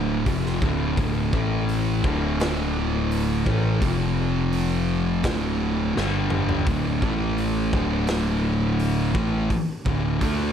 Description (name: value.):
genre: stoner and doom metal.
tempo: 84 BPM.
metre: 4/4.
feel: straight.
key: D minor.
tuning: A4 = 440 Hz.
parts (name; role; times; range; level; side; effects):
thick fuzz guitar; riff; 0.0-10.5 s; D2 to D4; -26 LUFS; left 7 dB; distortion.
thick fuzz guitar; riff; 0.0-10.5 s; D2 to D4; -26 LUFS; right 8 dB; distortion.
fuzz picked electric bass; bass; 0.0-10.5 s; D1 to D2; -28 LUFS; equal; overdrive.
raw garage drum kit; drums; 0.3-10.4 s; hi-hat, kick drum, snare drum, toms; -28 LUFS; equal; none.
room: moderate large studio reverb, RT60 0.9 s, small room ambience.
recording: dark, warm production.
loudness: -21 LUFS.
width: side -8 dB against mid.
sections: 0.0-6.7 A section; 6.7-10.5 B section.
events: drum fill 6.0-6.7.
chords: 0.0 Dm; 1.3 A5; 2.0 D5; 3.8 F5; 5.2 D5; 6.0 G5; 6.7 D5; 7.0 A5; 7.7 D5.